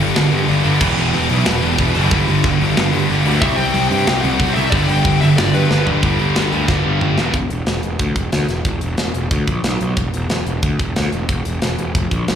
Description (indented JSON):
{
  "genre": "heavy metal",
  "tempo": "184 BPM",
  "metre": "4/4",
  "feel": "straight",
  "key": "unclear",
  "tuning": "A4 = 440 Hz",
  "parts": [
    { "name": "heavy high-gain guitar", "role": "riff", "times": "0.0-7.3 s", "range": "G2 to G3", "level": "-23 LUFS", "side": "left 13 dB", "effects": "distortion" },
    { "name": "high-gain distorted guitar", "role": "riff", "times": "0.0-7.3 s", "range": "E2 to C4", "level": "-21 LUFS", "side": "right 7 dB", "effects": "distortion" },
    { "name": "high-gain distorted guitar", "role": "riff", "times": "0.0-7.3 s", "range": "E2 to C4", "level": "-21 LUFS", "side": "equal", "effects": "distortion" },
    { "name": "fuzz picked electric bass", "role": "bass", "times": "0.0-12.4 s", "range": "E1 to G2", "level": "-18 LUFS", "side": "equal", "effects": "overdrive" },
    { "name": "tight metal drum kit", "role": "drums", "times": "0.0-12.4 s", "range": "crash cymbal, hi-hat, kick drum, snare drum, toms", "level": "-20 LUFS", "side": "equal", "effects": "none" },
    { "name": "high-gain lead guitar", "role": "melody", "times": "3.4-5.9 s", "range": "B4 to G5", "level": "-23 LUFS", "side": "left 4 dB", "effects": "distortion" }
  ],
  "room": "little or no reverb",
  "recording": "live gig heard through the venue's PA, club reverb",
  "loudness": "-14 LUFS",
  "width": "side -8 dB against mid",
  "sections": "0.0-6.0 A section; 6.0-7.3 B section; 7.3-12.4 C section",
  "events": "half time 0.0-6.0; drum fill 5.7-6.0, 6.7-7.3",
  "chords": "0.0 G5; 0.8 Em; 2.1 G5; 3.4 C5; 4.7 G; 6.0 G5; 7.3 Dsus2/E; 9.6 N.C.; 12.0 Fsus4"
}